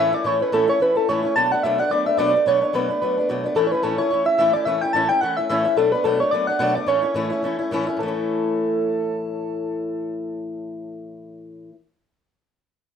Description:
celtic folk; 217 BPM; 4/4; swing 56% on 8ths; A major; A4 = 445 Hz
soft struck synth lead; melody; 0.0-11.0 s; A4 to A5; -20 LUFS; equal; chorus
fingerpicked swing-style acoustic guitar; accompaniment; 0.0-11.7 s; A2 to E4; -24 LUFS; left 1 dB
moderate studio reverb, RT60 0.6 s; dark, warm production; -18 LUFS; side -8 dB against mid
0.0-8.0 A section; 8.0-10.2 B section
0.0 A; 1.4 Bm7; 3.6 A; 5.8 Bm7; 6.9 A

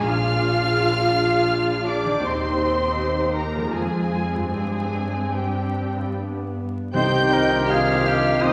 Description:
classical, slow romantic movement for symphony orchestra; 72-85 BPM; 3/4; rubato; C minor; A4 = 438 Hz
muted studio violin section; melody; 0.0-8.5 s; G5 to G6; -30 LUFS; equal
muted studio violin section; second line; 0.0-8.5 s; G4 to G5; -30 LUFS; equal
muted studio viola section; accompaniment; 0.0-8.5 s; B3 to Ab4; -31 LUFS; equal
concert harp; arpeggios; 0.0-8.5 s; F2 to Ab4; -32 LUFS; equal
muted studio cello section; bass; 0.0-8.5 s; Eb2 to F4; -30 LUFS; equal
muted studio double bass section; bass; 0.0-8.5 s; Bb1 to G2; -31 LUFS; equal
clear oboe; second line; 6.9-8.5 s; G4 to C5; -26 LUFS; equal
mellow hollow silver concert flute; second line; 6.9-8.5 s; Eb5 to G5; -30 LUFS; equal
dark bassoon; accompaniment; 6.9-8.5 s; C4 to F4; -29 LUFS; equal
mellow trombone section; sustained chords; 6.9-8.5 s; Eb3 to C4; -30 LUFS; equal
warm French horn section; sustained chords; 6.9-8.5 s; Eb4 to G4; -28 LUFS; equal
dark trumpet section; stabs; 6.9-8.5 s; G4; -33 LUFS; equal
timpani; percussion; 6.9-8.0 s; C3; -30 LUFS; equal
wet recital hall reverb, RT60 1.4 s; vinyl crackle; -22 LUFS; mono
0.0-6.9 A section; 6.9-8.5 B section
0.1 Bb7; 2.2 Eb; 3.7 Fm; 4.5 Gsus4; 6.1 G; 6.9 Cm

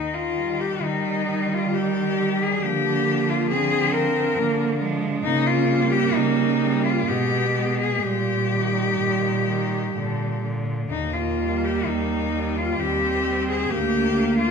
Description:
classical, lyrical piece for cello ensemble; 61-69 BPM; 3/4; rubato; Eb major; A4 = 437 Hz
clear cello; melody; 0.0-14.5 s; Eb4 to Bb4; -24 LUFS; left 6 dB
rich cello; bass; 0.0-14.5 s; D2 to Eb3; -27 LUFS; right 1 dB
clear cello; accompaniment; 0.4-14.5 s; D3 to Bb3; -30 LUFS; left 3 dB
clear cello; second line; 0.8-14.5 s; G3 to C4; -26 LUFS; right 9 dB
moderate recital hall reverb, RT60 1.8 s; minimal, uncompressed stereo recording; -20 LUFS; side -6 dB against mid
0.0-14.5 A section
0.0 Eb; 2.6 Bb/D; 5.3 Eb9/Db; 7.1 Abm/Cb; 8.0 Eb/Bb; 9.9 Bb; 10.9 Eb; 13.7 Bb/D

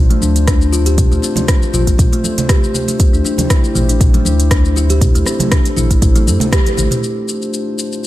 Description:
afro house; 119 BPM; 4/4; swing 54% on 16ths; D minor; A4 = 440 Hz
dark analog pad; sustained chords; 0.0-8.1 s; A3 to C5; -25 LUFS; left 2 dB; chorus, sidechain pumping
warm sub bass; bass; 0.0-6.9 s; A1 to G2; -15 LUFS; equal; sidechain pumping
kalimba; arpeggios; 0.1-7.0 s; A3 to A4; -19 LUFS; left 1 dB; sidechain pumping, tape echo
afro-pop drum kit; drums; 0.1-8.1 s; hi-hat, rim click, shaker, toms; -20 LUFS; left 1 dB; studio reverb
congas; percussion; 0.1-7.0 s; -22 LUFS; right 2 dB
electronic kick drum; drums; 0.5-6.6 s; -12 LUFS; equal; studio reverb
digital ambience; faint mains hum; -11 LUFS; side -15 dB against mid
0.0-7.0 A section; 7.0-8.1 B section
band accent 6.5; drum fill 6.8
0.0 Dm7; 3.0 Am7; 7.0 Dm7

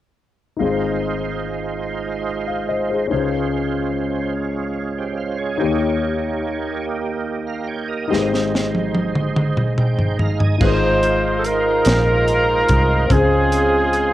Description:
slow gospel; 48 BPM (dotted quarters); 6/8; straight; Ab major; A4 = 441 Hz
warm grand piano; accompaniment; 0.6-14.1 s; Ab1 to F5; -23 LUFS; left 5 dB; cassette tape
overdriven tonewheel organ; sustained chords; 0.6-14.1 s; Db3 to Bb5; -24 LUFS; right 5 dB; slow rotary speaker, chorus vibrato, cassette tape
crisp fusion drum kit; drums; 8.1-14.1 s; crash cymbal, hi-hat, kick drum, snare drum, toms; -20 LUFS; equal; cassette tape
clear alto saxophone; melody; 10.6-14.1 s; Ab4 to C5; -20 LUFS; right 2 dB; cassette tape
clear horn section; melody; 10.6-14.1 s; C4 to C5; -20 LUFS; left 1 dB; cassette tape
fingered electric bass; bass; 10.6-14.1 s; Ab1 to Db2; -20 LUFS; equal
moderate spring reverb, RT60 2.4 s; home recording on cassette; -17 LUFS; side -14 dB against mid
0.6-10.6 A section; 10.6-14.1 B section
drum fill 8.1-10.6
0.6 Ab6; 3.1 Dbmaj7; 5.6 Eb7; 8.1 Abmaj7; 10.6 Ab6; 13.1 Dbmaj7

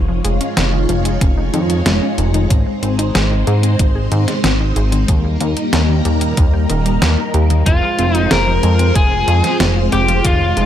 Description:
synthwave; 93 BPM; 4/4; straight; F minor; A4 = 440 Hz
string machine, full ensemble; sustained chords; 0.0-10.7 s; G3 to Db5; -20 LUFS; equal; phaser, ensemble chorus, sidechain pumping
wide unison pluck; arpeggios; 0.0-10.7 s; Eb3 to Ab4; -23 LUFS; left 2 dB; tape echo
chorused synth bass; bass; 0.0-10.7 s; Eb1 to Ab2; -16 LUFS; equal; sidechain pumping
detuned 8-bit digital drum machine; drums; 0.2-10.7 s; hi-hat, snare drum; -20 LUFS; equal
electronic kick drum; drums; 1.2-10.4 s; -15 LUFS; equal
biting lead guitar; melody; 7.7-10.7 s; F4 to Bb4; -17 LUFS; left 2 dB; overdrive, ping-pong delay
light reverb; -12 LUFS; side -10 dB against mid
0.0-10.7 A section
0.0 Dbadd9/F; 2.5 Ab; 5.1 Eb; 7.7 Fm

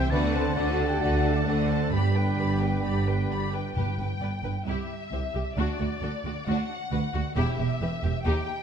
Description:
cinematic, heroic adventure film score; 133 BPM; 4/4; straight; G major; A4 = 439 Hz
warm symphonic violin section; melody; 0.0-8.6 s; D5 to B5; -35 LUFS; left 4 dB
dark clarinet; second line; 0.0-3.5 s; D5 to E5; -38 LUFS; left 6 dB
rich symphonic violin section; second line; 0.0-8.5 s; D4 to D5; -40 LUFS; left 3 dB
warm oboe; second line; 0.0-3.5 s; G5 to B5; -35 LUFS; right 1 dB
clear symphonic viola section; accompaniment; 0.0-8.5 s; F#4 to G5; -36 LUFS; equal
clear trombone section; sustained chords; 0.0-3.5 s; D3 to B3; -33 LUFS; right 3 dB
clear symphonic cello section; bass; 0.0-8.3 s; C2 to D3; -30 LUFS; right 2 dB
clear symphonic double bass section; bass; 0.0-8.3 s; E1 to Eb2; -29 LUFS; right 3 dB
mellow flute section; second line; 0.1-3.5 s; G4 to G5; -40 LUFS; left 2 dB
mellow French horn section; sustained chords; 0.1-3.5 s; G3 to G4; -32 LUFS; left 5 dB
dark trumpet; stabs; 0.1-3.5 s; G4 to G5; -36 LUFS; right 2 dB
timpani; percussion; 3.8-4.4 s; G2; -33 LUFS; left 1 dB
moderate scoring stage reverb, RT60 1.6 s; dark, warm production; -24 LUFS; side -7 dB against mid
0.0-3.8 A section; 3.8-8.6 B section
0.1 D; 1.9 G; 4.7 C; 5.6 D; 7.4 Em

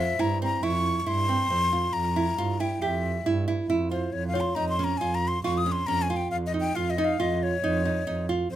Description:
contemporary instrumental, chamber music in an uneven meter; 137 BPM; 5/4; straight; A4 = 444 Hz
breathy jazz flute; melody; 0.0-8.6 s; C5 to Eb6; -28 LUFS; left 3 dB
nylon-string guitar; arpeggios; 0.0-8.5 s; C4 to G4; -29 LUFS; right 4 dB
warm double bass; bass; 0.0-8.6 s; F2 to G2; -29 LUFS; right 2 dB
worn celesta; texture; 0.0-0.7, 4.3-7.7 s; C5 to Eb5; -33 LUFS; left 9 dB
light reverb; close, detailed microphones; -24 LUFS; side -12 dB against mid
0.0-8.6 A section
0.0 C7/F; 4.1 Bbmadd11/F (rootless)

